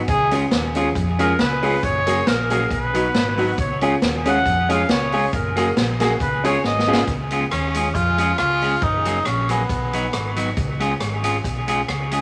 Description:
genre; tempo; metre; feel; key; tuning
ska; 137 BPM; 4/4; swing 54% on 8ths; Db mixolydian; A4 = 440 Hz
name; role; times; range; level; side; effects
dark upright piano; stabs; 0.0-7.0 s; Bb3 to Ab4; -26 LUFS; equal; none
hollow-body short-scale fingered electric bass; bass; 0.0-12.2 s; Gb1 to F2; -28 LUFS; equal; none
warm trumpet; melody; 0.1-7.1 s; Ab4 to Gb5; -24 LUFS; equal; none
swinging big-band drum kit; drums; 0.1-12.2 s; hi-hat, kick drum, rim click, snare drum; -27 LUFS; equal; none
clean electric guitar; accompaniment; 0.3-12.2 s; Gb3 to Ab4; -26 LUFS; equal; spring reverb, dub echo
clear tenor saxophone; melody; 7.5-10.4 s; Cb4 to F4; -24 LUFS; equal; none
room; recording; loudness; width
moderate large studio reverb, RT60 1.0 s; none; -20 LUFS; mono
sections
0.0-7.1 A section; 7.1-12.2 B section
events
trumpet solo 0.0-7.1; drum fill 6.6-7.1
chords
0.1 Db; 1.8 Gbadd9; 2.7 Cb; 3.6 Db; 5.3 Gbadd9; 6.2 Db; 8.8 Gbadd9; 9.7 Cb; 10.6 Db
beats
| 0.09 0.52 0.96 1.40 | 1.84 2.27 2.71 3.15 | 3.58 4.02 4.46 4.89 | 5.33 5.77 6.20 6.64 | 7.08 7.51 7.95 8.38 | 8.82 9.26 9.70 10.13 | 10.57 11.01 11.44 11.88

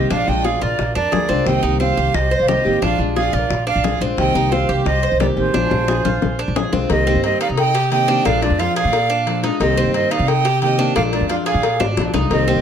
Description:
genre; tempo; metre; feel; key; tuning
latin, Cuban son and guajira; 177 BPM; 4/4; straight; unclear; A4 = 440 Hz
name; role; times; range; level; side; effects
breathy silver concert flute; melody; 0.0-12.6 s; C5 to G5; -20 LUFS; right 4 dB; none
rich chamber violin section; second line; 0.0-12.6 s; Ab4 to Eb5; -29 LUFS; right 1 dB; none
nylon-string guitar; accompaniment; 0.0-12.6 s; C3 to G4; -22 LUFS; left 2 dB; none
Cuban tres; arpeggios; 0.0-12.6 s; C4 to C5; -23 LUFS; right 2 dB; none
upright bass; bass; 0.0-12.6 s; Ab1 to C3; -21 LUFS; left 1 dB; none
bongos and cowbell; percussion; 0.1-12.5 s; none; -24 LUFS; left 7 dB; none
room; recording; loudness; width
light reverb; close, detailed microphones; -15 LUFS; side -8 dB against mid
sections
0.0-6.9 A section; 6.9-12.6 B section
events
drum fill 5.5-6.9, 11.8-12.3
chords
0.1 Bb9; 1.5 Cm7; 2.8 Bb9; 4.2 Cm7; 5.5 Bb9; 6.9 Cm7; 8.3 Bb7; 9.6 Cm7; 11.0 Bb7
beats
| 0.10 0.44 0.79 1.12 | 1.47 1.80 2.15 2.48 | 2.83 3.17 3.50 3.84 | 4.18 4.52 4.86 5.20 | 5.54 5.88 6.22 6.56 | 6.90 7.24 7.58 7.91 | 8.25 8.59 8.93 9.27 | 9.60 9.94 10.28 10.62 | 10.96 11.29 11.63 11.97 | 12.31

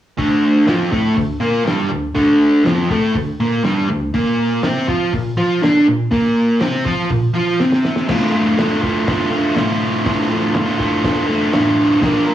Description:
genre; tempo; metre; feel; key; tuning
garage rock duo or trio; 122 BPM; 4/4; straight; D minor; A4 = 440 Hz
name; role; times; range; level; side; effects
overdriven electric guitar; riff; 0.2-12.3 s; D2 to Bb4; -14 LUFS; equal; cassette tape
cloth-damped thuddy drum kit; drums; 0.2-12.1 s; crash cymbal, hi-hat, kick drum, snare drum; -22 LUFS; equal; cassette tape
room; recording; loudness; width
moderate digital room reverb, RT60 1.0 s; home recording on cassette, small room reverb; -14 LUFS; side -12 dB against mid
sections
0.2-8.1 A section; 8.1-12.3 B section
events
drum fill 7.6-8.1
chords
0.2 Dm; 4.1 Bb5; 8.1 Dm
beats
| 0.18 0.68 1.17 1.67 | 2.16 2.66 3.15 3.65 | 4.14 4.63 5.13 5.62 | 6.12 6.61 7.10 7.59 | 8.09 8.58 9.07 9.56 | 10.05 10.54 11.04 11.53 | 12.02

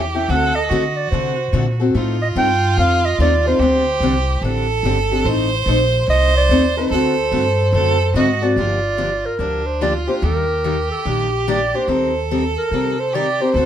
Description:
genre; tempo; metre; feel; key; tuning
acoustic string swing (jazz manouche); 145 BPM; 4/4; swing 63% on 8ths; G minor; A4 = 440 Hz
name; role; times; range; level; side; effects
clear violin; second line; 0.0-13.7 s; D4 to C5; -23 LUFS; right 5 dB; none
upright bass; bass; 0.0-13.7 s; G1 to D3; -20 LUFS; equal; none
picked steel-string acoustic guitar; accompaniment; 0.1-13.7 s; D3 to Bb4; -21 LUFS; left 3 dB; none
breathy clarinet; melody; 0.2-13.7 s; G4 to G5; -20 LUFS; right 1 dB; none
room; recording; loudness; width
moderate studio reverb, RT60 0.6 s; none; -15 LUFS; side -10 dB against mid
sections
0.0-8.6 A section; 8.6-13.7 B section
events
none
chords
0.3 D7; 1.9 Adim; 3.6 D7sus4; 5.3 Adim; 6.9 D7; 8.6 Gm7; 10.2 Ebmaj7; 11.9 Cm7/Eb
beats
| 0.30 0.71 1.12 1.54 | 1.95 2.36 2.77 3.19 | 3.60 4.01 4.43 4.84 | 5.25 5.67 6.08 6.50 | 6.91 7.32 7.74 8.15 | 8.57 8.98 9.40 9.81 | 10.23 10.64 11.06 11.47 | 11.89 12.31 12.72 13.14 | 13.55

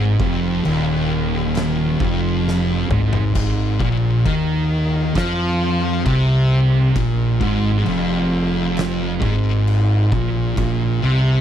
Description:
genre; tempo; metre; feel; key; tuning
stoner and doom metal; 67 BPM; 4/4; straight; unclear; A4 = 440 Hz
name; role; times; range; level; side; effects
thick fuzz guitar; riff; 0.0-11.4 s; Eb2 to F3; -20 LUFS; left 6 dB; distortion
thick fuzz guitar; riff; 0.0-11.4 s; Eb2 to F3; -20 LUFS; right 6 dB; distortion
fuzz fingered electric bass; bass; 0.0-11.4 s; Eb1 to F2; -24 LUFS; equal; overdrive
oversized low-tuned drum kit; drums; 0.2-10.8 s; crash cymbal, kick drum, snare drum, toms; -26 LUFS; left 1 dB; none
room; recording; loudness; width
studio ambience; none; -16 LUFS; side -10 dB against mid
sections
0.0-11.4 A section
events
drum fill 2.5-3.4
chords
0.0 F5; 3.4 Ab5; 10.6 Bb5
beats
0.66 1.56 2.46 | 3.36 4.26 5.16 6.06 | 6.96 7.87 8.77 9.67 | 10.58

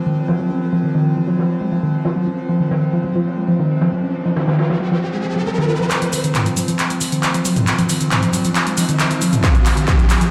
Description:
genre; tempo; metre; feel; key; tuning
driving peak-time techno; 136 BPM; 4/4; straight; unclear; A4 = 437 Hz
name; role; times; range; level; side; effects
metallic inharmonic drone; drone; 0.0-10.3 s; F3 to C4; -26 LUFS; equal; chorus, built-in reverb, sidechain pumping
warbly dusty pluck; riff; 0.1-10.3 s; Eb3 to F4; -21 LUFS; equal; chorus, sidechain pumping, digital delay
jazz brush drum kit; drums; 0.2-5.8 s; hi-hat, ride cymbal, snare drum; -34 LUFS; equal; sidechain pumping on cymbals, high-pass filter on cymbals, low-pass filter on cymbals, sidechain pumping on hats, high-pass filter on hats, low-pass filter on hats, high-pass filter on snare, low-pass filter on snare, high-pass filter on room, low-pass filter on room
riser; sound effects; 3.8-10.3 s; none; -30 LUFS; equal; none
punchy analog drum machine; drums; 5.9-10.3 s; handclaps, hi-hat, shaker, toms; -21 LUFS; equal; low-pass filter on snare, sidechain pumping on hats, low-pass filter on hats, sidechain pumping on perc, low-pass filter on perc, sidechain pumping on toms, low-pass filter on toms, low-pass filter on room
electronic kick drum; drums; 9.4-10.0 s; none; -16 LUFS; equal; distortion, overdrive
room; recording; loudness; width
wet lush hall reverb, RT60 2.0 s; played on a big sound system in a bare room, large studio reverb; -18 LUFS; mono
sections
0.0-5.9 A section; 5.9-10.3 B section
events
filter sweep on synth arpeggio sound 0.0-5.9, 5.9-10.3; riser 3.8-5.9, 5.9-10.3; build-up 5.9-10.3; drum fill 5.9-10.3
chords
0.0 F5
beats
0.17 | 0.61 1.06 1.50 1.94 | 2.38 2.82 3.26 3.70 | 4.14 4.58 5.03 5.47 | 5.91 6.35 6.79 7.23 | 7.67 8.12 8.56 9.00 | 9.44 9.88

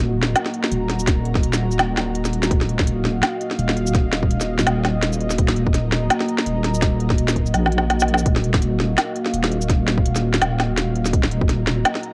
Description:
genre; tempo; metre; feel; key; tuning
half-time drum and bass; 167 BPM; 4/4; swing 56% on 16ths, half-time; Eb minor; A4 = 440 Hz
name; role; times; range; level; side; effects
dark analog pad; sustained chords; 0.0-12.1 s; Bb3 to Bb5; -27 LUFS; equal; chorus, sidechain pumping
deep soft wobble bass; bass; 0.0-11.8 s; Eb1 to Bb1; -24 LUFS; equal; chorus
organic electronic drum kit; drums; 0.0-12.1 s; hi-hat, shaker, snare drum; -24 LUFS; equal; cassette tape
electronic kick drum; drums; 1.1-11.5 s; none; -21 LUFS; equal; cassette tape
room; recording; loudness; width
light reverb; home recording on cassette; -20 LUFS; mono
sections
0.0-12.1 A section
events
drum fill 7.5-8.3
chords
0.0 Ebmadd9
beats
0.35 0.71 | 1.07 1.43 1.79 2.15 | 2.51 2.87 3.23 3.59 | 3.95 4.31 4.67 5.03 | 5.38 5.74 6.10 6.46 | 6.82 7.18 7.54 7.90 | 8.26 8.62 8.98 9.34 | 9.70 10.05 10.41 10.77 | 11.13 11.49 11.85

